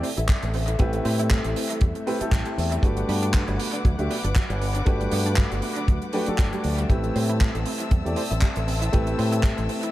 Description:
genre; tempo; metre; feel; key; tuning
nu-disco, nu disco; 118 BPM; 4/4; swing 55% on 16ths; A dorian; A4 = 441 Hz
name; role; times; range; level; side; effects
warm grand piano; accompaniment; 0.0-9.9 s; A3 to E5; -28 LUFS; equal; sidechain pumping, analog delay
muted studio string section; sustained chords; 0.0-9.9 s; C4 to E6; -33 LUFS; left 3 dB; sidechain pumping
analog pluck; arpeggios; 0.0-9.9 s; F#3 to E4; -33 LUFS; right 2 dB; chorus, vintage 12-bit sampler grit, sidechain pumping, analog delay
damped 70s drum kit; drums; 0.0-9.9 s; handclaps, hi-hat; -32 LUFS; right 2 dB; studio reverb, analog delay
fingered electric bass with an envelope filter; bass; 0.2-9.7 s; G1 to A2; -26 LUFS; equal; sidechain pumping
kick drum; drums; 0.3-9.6 s; none; -20 LUFS; equal; studio reverb
room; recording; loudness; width
studio ambience; echo-heavy mix; -21 LUFS; side -15 dB against mid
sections
0.0-9.9 A section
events
none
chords
0.0 Am7; 2.8 Gmaj7; 6.9 Am7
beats
0.29 | 0.80 1.31 1.81 2.32 | 2.83 3.34 3.85 4.36 | 4.87 5.37 5.88 6.39 | 6.90 7.41 7.92 8.43 | 8.93 9.44

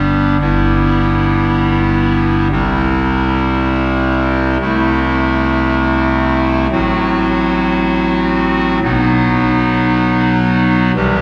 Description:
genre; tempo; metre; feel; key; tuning
classical, chorale-style piece for pipe organ; 85 BPM; 3/4; rubato; unclear; A4 = 437 Hz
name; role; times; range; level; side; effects
pipe organ, clarinet reed; solo; 0.0-11.2 s; G1 to G4; -14 LUFS; equal; none
room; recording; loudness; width
wet church reverb, RT60 2.7 s; heard from further back in the room; -14 LUFS; mono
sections
0.0-11.2 A section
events
none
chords
0.4 Em/G; 2.5 C; 4.6 Am/C; 6.7 F#dim/A; 8.8 B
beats
| 0.41 1.12 1.82 | 2.52 3.21 3.92 | 4.62 5.32 6.01 | 6.71 7.42 8.12 | 8.83 9.54 10.24 | 10.95

